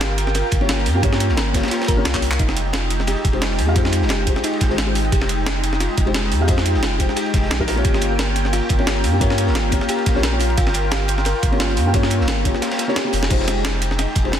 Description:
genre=liquid drum and bass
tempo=176 BPM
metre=4/4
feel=swing 54% on 16ths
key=F minor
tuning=A4 = 443 Hz
part: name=warm analog pad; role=sustained chords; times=0.0-14.4 s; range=Ab3 to G5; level=-26 LUFS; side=right 1 dB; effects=chorus, vintage 12-bit sampler grit
part: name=thumb-piano-like synth pluck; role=arpeggios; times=0.0-13.1 s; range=Eb4 to Bb4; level=-29 LUFS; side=right 2 dB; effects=chorus, dub echo
part: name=warm sub bass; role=bass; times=0.0-14.4 s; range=F1 to G2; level=-21 LUFS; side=equal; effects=none
part: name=breakbeat sampler-style drum kit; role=drums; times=0.0-14.4 s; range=crash cymbal, handclaps, hi-hat, snare drum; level=-24 LUFS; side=right 1 dB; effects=small room ambience
part: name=crunchy breakbeat drum kit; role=drums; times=0.0-14.4 s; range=ride cymbal, snare drum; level=-29 LUFS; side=left 1 dB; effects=high-pass filter on cymbals, small room ambience, high-pass filter on snare, high-pass filter on room
part: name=electronic kick drum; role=drums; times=0.5-14.2 s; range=none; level=-20 LUFS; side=equal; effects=small room ambience
part: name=felt-muted upright piano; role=accompaniment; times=0.6-14.4 s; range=Ab3 to G5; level=-23 LUFS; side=left 3 dB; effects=ping-pong delay
room=light reverb, studio ambience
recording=dense, heavily limited modern master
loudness=-16 LUFS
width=side -9 dB against mid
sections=0.0-13.3 A section; 13.3-14.4 A section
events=drop 0.0-13.3, 13.3-14.4; drum fill 2.1, 13.0-13.3; kick drops out 12.6-13.3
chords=0.0 Gm7b5; 2.4 Fm9; 7.8 Gm7b5; 13.3 Fm9

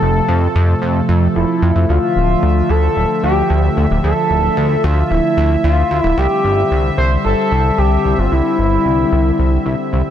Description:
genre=synthwave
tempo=112 BPM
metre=4/4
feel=straight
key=D minor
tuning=A4 = 440 Hz
part: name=expressive synth lead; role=melody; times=0.0-10.1 s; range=E4 to C5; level=-17 LUFS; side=left 1 dB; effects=lush chorus, vintage 12-bit sampler grit, tape echo
part: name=warm analog pad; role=sustained chords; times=0.0-10.1 s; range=C3 to E5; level=-19 LUFS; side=equal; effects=chorus
part: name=chorused synth bass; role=bass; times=0.0-10.0 s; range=D1 to F2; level=-15 LUFS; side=equal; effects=none
room=light reverb, digital ambience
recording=none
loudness=-12 LUFS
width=side -10 dB against mid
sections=0.0-10.1 A section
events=none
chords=0.0 F; 1.9 Dmadd9; 6.2 Cadd9

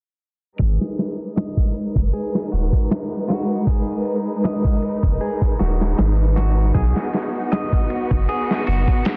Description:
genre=trip hop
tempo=78 BPM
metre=4/4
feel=swing 54% on 16ths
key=G# minor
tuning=A4 = 439 Hz
part: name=clear symphonic string section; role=sustained chords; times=0.6-9.2 s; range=G#3 to B4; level=-27 LUFS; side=equal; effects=low-pass filter
part: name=clean electric guitar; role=arpeggios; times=0.6-9.0 s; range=F#4 to D#5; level=-33 LUFS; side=equal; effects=low-pass filter, delay
part: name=soft dub sub bass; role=bass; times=0.6-8.9 s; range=D#1 to B1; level=-20 LUFS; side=equal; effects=none
part: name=dusty soul sampler-style drum kit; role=drums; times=0.6-9.2 s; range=kick drum, ride cymbal, snare drum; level=-23 LUFS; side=equal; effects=low-pass filter on kick, low-pass filter on cymbals, low-pass filter on snare, low-pass filter on room
room=digital ambience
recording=dense, heavily limited modern master, low-pass filter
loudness=-20 LUFS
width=mono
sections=0.6-9.2 A section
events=filter sweep on string section 0.6-9.2; filter sweep on clean electric guitar 0.6-9.2; filter sweep 0.6-9.2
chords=0.6 G#madd9; 6.8 B

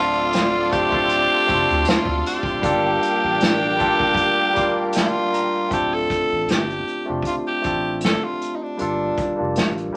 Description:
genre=R&B, neo-soul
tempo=78 BPM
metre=4/4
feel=swing 53% on 16ths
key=unclear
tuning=A4 = 440 Hz
part: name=growling tenor saxophone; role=melody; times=0.0-9.4 s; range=D4 to A4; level=-24 LUFS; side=equal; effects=none
part: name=barky tine electric piano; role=accompaniment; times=0.0-10.0 s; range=G3 to Bb5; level=-25 LUFS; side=equal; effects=overdrive
part: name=warm studio string section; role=sustained chords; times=0.0-5.7 s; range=Bb3 to C6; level=-31 LUFS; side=equal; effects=none
part: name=dark horn section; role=stabs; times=0.0-5.3 s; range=D3 to A4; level=-33 LUFS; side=equal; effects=none
part: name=saturated sub bass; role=bass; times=0.0-9.9 s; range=D1 to D2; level=-33 LUFS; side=equal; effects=none
part: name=unplugged drum kit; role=drums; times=0.1-9.9 s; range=hi-hat, kick drum, snare drum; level=-26 LUFS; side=equal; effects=none
room=wet studio reverb, RT60 0.5 s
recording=vinyl crackle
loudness=-20 LUFS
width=mono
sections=0.0-5.7 A section; 5.7-10.0 B section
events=tine electric piano fill 4.2-5.7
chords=0.0 Dm7; 2.6 Gm9; 5.7 Dm7; 8.8 Gm9

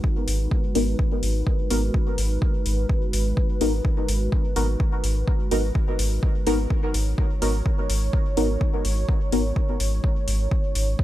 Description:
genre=dub techno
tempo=126 BPM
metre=4/4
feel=swing 54% on 16ths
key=G# minor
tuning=A4 = 440 Hz
part: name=dark analog pad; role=sustained chords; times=0.0-11.0 s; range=G#3 to C#5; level=-32 LUFS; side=right 1 dB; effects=chorus, sidechain pumping
part: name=electronic kick drum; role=drums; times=0.0-11.0 s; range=none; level=-24 LUFS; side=equal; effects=overdrive
part: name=warm sub bass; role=bass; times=0.3-10.9 s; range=G#1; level=-24 LUFS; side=equal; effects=sidechain pumping
part: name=electronic hi-hat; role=drums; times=0.3-10.9 s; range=none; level=-32 LUFS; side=left 2 dB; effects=overdrive
part: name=deep mellow chord stab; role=stabs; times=0.8-9.4 s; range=B3 to A#4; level=-28 LUFS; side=left 1 dB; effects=chorus, phaser, sidechain pumping, dub echo
room=digital ambience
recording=none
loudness=-21 LUFS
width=side -14 dB against mid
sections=0.0-11.0 A section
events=none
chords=0.0 G#m7

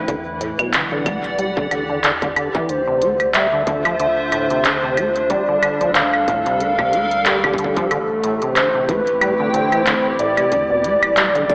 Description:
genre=IDM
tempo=92 BPM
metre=4/4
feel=swing 56% on 16ths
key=D minor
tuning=A4 = 439 Hz
part: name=hollow soft pad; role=sustained chords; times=0.0-11.5 s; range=D3 to G5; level=-23 LUFS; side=equal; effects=ensemble chorus
part: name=deep acid bass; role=arpeggios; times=0.0-11.5 s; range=A2 to A3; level=-23 LUFS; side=equal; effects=diffuse ambient delay
part: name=warm sub bass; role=bass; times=0.0-11.5 s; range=G1 to E2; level=-36 LUFS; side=equal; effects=none
part: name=electronic kick drum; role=drums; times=0.1-11.5 s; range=none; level=-26 LUFS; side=equal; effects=distortion
part: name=industrial drum kit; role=drums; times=0.1-11.5 s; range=claves, handclaps, hi-hat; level=-20 LUFS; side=equal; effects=diffuse ambient delay
part: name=warbly nostalgic lead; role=melody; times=2.7-11.5 s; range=G4 to F5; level=-18 LUFS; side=equal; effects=chorus, tape echo
room=wet lush hall reverb, RT60 1.6 s, digital ambience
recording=dreamy mix soaked in reverb, AM radio sound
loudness=-15 LUFS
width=side -31 dB against mid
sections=0.0-11.5 A section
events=none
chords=0.1 Em9; 2.7 Dm9; 5.3 Gm9; 7.9 Am9; 10.5 Em7

